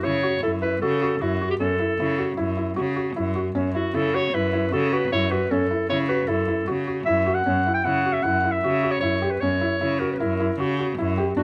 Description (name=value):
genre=contemporary instrumental, chamber music in an uneven meter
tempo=154 BPM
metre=5/4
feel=straight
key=F# phrygian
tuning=A4 = 443 Hz
part: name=warm clarinet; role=melody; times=0.0-11.4 s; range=F#4 to G5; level=-26 LUFS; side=equal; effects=none
part: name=felt-muted upright piano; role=arpeggios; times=0.0-11.4 s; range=C#4 to G4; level=-28 LUFS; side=equal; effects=none
part: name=clear cello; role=bass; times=0.0-11.4 s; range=F#2 to C#3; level=-28 LUFS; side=equal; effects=none
room=light reverb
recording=close, detailed microphones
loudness=-23 LUFS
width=mono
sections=0.0-11.4 A section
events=none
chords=0.0 F#m7; 7.5 F#7(no3)